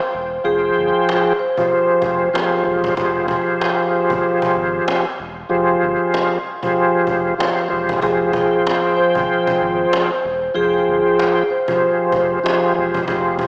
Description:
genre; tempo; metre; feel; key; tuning
hip hop, boom-bap hip-hop; 95 BPM; 4/4; swing 59% on 16ths; F harmonic minor; A4 = 440 Hz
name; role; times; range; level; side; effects
vibraphone with soft mallets; melody; 0.0-2.3, 8.0-12.4 s; Ab4 to C5; -22 LUFS; equal; analog delay
sub bass with octave; bass; 0.1-13.5 s; E1 to Ab1; -37 LUFS; equal; none
cajon; drums; 0.1-13.5 s; none; -28 LUFS; equal; none
tonewheel organ; accompaniment; 0.4-13.5 s; F3 to G5; -20 LUFS; equal; chorus vibrato, slow rotary speaker, cassette tape
room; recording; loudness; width
wet lush hall reverb, RT60 2.1 s; dreamy mix soaked in reverb, small speaker sound; -18 LUFS; mono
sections
0.0-13.5 A section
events
none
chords
0.0 Fmadd9

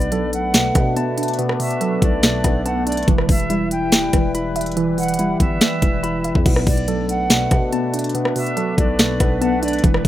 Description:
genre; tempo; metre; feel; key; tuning
hip hop, trap; 142 BPM; 4/4; half-time; unclear; A4 = 443 Hz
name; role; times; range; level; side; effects
silver concert flute; second line; 0.0-10.1 s; D5 to G5; -26 LUFS; right 1 dB; digital delay
warbly dusty pluck; accompaniment; 0.0-10.1 s; B2 to E5; -24 LUFS; right 3 dB; chorus, low-pass filter
sweeping resonant pad; sustained chords; 0.0-10.1 s; G3 to B4; -27 LUFS; equal; chorus, phaser
tine electric piano; arpeggios; 0.0-10.1 s; E3 to B5; -24 LUFS; left 2 dB; medium stereo tremolo, low-pass filter, digital delay
growling 808-style bass; bass; 0.0-10.1 s; E1 to B2; -26 LUFS; equal; none
trap drum kit; drums; 0.0-10.1 s; crash cymbal, hi-hat, kick drum, rim click, snare drum; -18 LUFS; equal; overdrive
room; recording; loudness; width
digital ambience; rough home demo mix; -16 LUFS; side -13 dB against mid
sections
0.0-6.5 A section; 6.5-10.1 A section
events
none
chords
0.0 Bm7; 3.1 Em; 6.5 Bm7

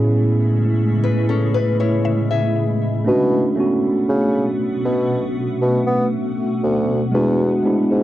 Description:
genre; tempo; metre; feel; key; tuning
contemporary R&B; 59 BPM; 4/4; straight; unclear; A4 = 442 Hz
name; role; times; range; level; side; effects
mellow tine electric piano; accompaniment; 0.0-8.0 s; A2 to G#4; -19 LUFS; right 1 dB; cassette tape
granular cloud pad; sustained chords; 0.0-8.0 s; B2 to F#4; -22 LUFS; left 1 dB; built-in reverb, cassette tape
mallet-like synth pluck; texture; 0.0-3.5 s; C#5 to E5; -36 LUFS; left 4 dB; chorus, cassette tape, tape echo
nylon-string guitar; arpeggios; 1.0-3.0 s; C#4 to E5; -23 LUFS; left 6 dB; cassette tape, tape echo
mellow bassoon; bass; 3.1-8.0 s; D2 to B3; -19 LUFS; equal; none
room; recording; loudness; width
light reverb, studio reverb; home recording on cassette; -16 LUFS; side -14 dB against mid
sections
0.0-3.1 A section; 3.1-8.0 A section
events
break 0.0-3.1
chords
0.0 Amaj7; 3.1 Bm9; 7.1 E9

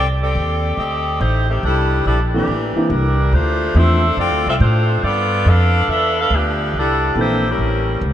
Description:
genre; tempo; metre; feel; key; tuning
jazz, big band swing; 141 BPM; 4/4; swing 68% on 8ths; C mixolydian; A4 = 441 Hz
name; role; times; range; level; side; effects
clear saxophone section; melody; 0.0-8.0 s; Eb3 to F5; -18 LUFS; equal; none
upright bass; bass; 0.0-8.1 s; A1 to A2; -18 LUFS; equal; none
dark concert grand piano; accompaniment; 2.3-4.0, 7.2-7.4 s; E3 to A4; -23 LUFS; equal; none
room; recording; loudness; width
moderate cathedral reverb, RT60 5.7 s; in a vast, echoing space; -14 LUFS; side -11 dB against mid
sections
0.0-8.1 A section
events
none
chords
0.0 F13 (rootless); 1.6 C13; 3.3 Dm7; 5.0 G13; 6.7 C13; 7.6 A7b9

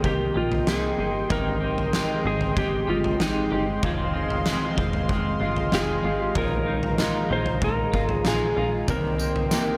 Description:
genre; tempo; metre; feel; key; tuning
dream pop; 95 BPM; 4/4; straight; C minor; A4 = 440 Hz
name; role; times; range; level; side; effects
clean lap steel guitar; melody; 0.0-9.8 s; Eb4 to C5; -30 LUFS; equal; delay
semi-hollow electric guitar; accompaniment; 0.0-9.8 s; F2 to G4; -34 LUFS; equal; tremolo, subtle chorus
warm analog pad; sustained chords; 0.0-9.8 s; Ab3 to C6; -32 LUFS; equal; chorus
mellow electric guitar; arpeggios; 0.0-9.8 s; Eb3 to G4; -33 LUFS; equal; ensemble chorus, delay
plucky analog bass; bass; 0.0-9.6 s; F1 to C2; -33 LUFS; equal; none
oversized low-tuned drum kit; drums; 0.0-9.7 s; kick drum, snare drum, tambourine, toms; -30 LUFS; equal; none
room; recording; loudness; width
light reverb, studio ambience; none; -24 LUFS; mono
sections
0.0-9.8 A section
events
none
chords
0.0 Cm7; 1.3 Abmaj7; 3.8 Fm7; 6.4 Bb7sus4; 8.9 Cm7

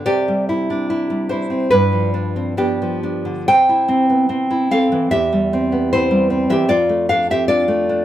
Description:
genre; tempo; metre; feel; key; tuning
romantic piece for solo classical guitar; 64-78 BPM; 2/4; rubato; C major; A4 = 440 Hz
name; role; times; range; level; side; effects
nylon-string guitar; solo; 0.0-8.0 s; E2 to G5; -15 LUFS; equal; none
room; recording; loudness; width
moderate studio reverb, RT60 0.5 s; band playing live in one room; -15 LUFS; side -12 dB against mid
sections
0.0-8.0 A section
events
none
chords
0.0 C; 1.7 G7; 3.5 C; 5.1 C/E; 6.7 Dm/F

